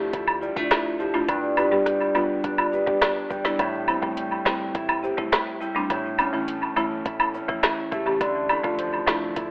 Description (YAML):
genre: dancehall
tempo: 104 BPM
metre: 4/4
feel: straight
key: A minor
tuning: A4 = 440 Hz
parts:
  - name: nylon-string guitar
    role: arpeggios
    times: 0.0-9.5 s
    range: G2 to E4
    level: -27 LUFS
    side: equal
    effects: none
  - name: sub bass with octave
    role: bass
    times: 0.0-9.5 s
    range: E1 to D2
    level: -46 LUFS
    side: equal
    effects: none
  - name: afro-pop drum kit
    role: drums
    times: 0.1-9.5 s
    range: hi-hat, kick drum, rim click, snare drum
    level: -25 LUFS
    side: equal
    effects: overdrive
  - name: woodblock and cabasa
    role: percussion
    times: 0.3-9.2 s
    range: none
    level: -26 LUFS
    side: equal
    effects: analog delay
  - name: buzzing marimba with soft mallets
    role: accompaniment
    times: 0.4-9.2 s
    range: E3 to G4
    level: -27 LUFS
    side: equal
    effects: sidechain pumping, analog delay
room: moderate echo chamber reverb, RT60 1.4 s, studio reverb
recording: echo-heavy mix, telephone sound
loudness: -21 LUFS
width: side -27 dB against mid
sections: 0.0-9.5 A section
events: none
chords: 0.0 Dmadd9; 1.3 G; 3.6 Am7; 5.9 A; 8.2 Dmadd9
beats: 0.13 0.71 | 1.28 1.86 2.44 3.02 | 3.59 4.17 4.75 5.32 | 5.90 6.48 7.05 7.63 | 8.21 8.79 9.36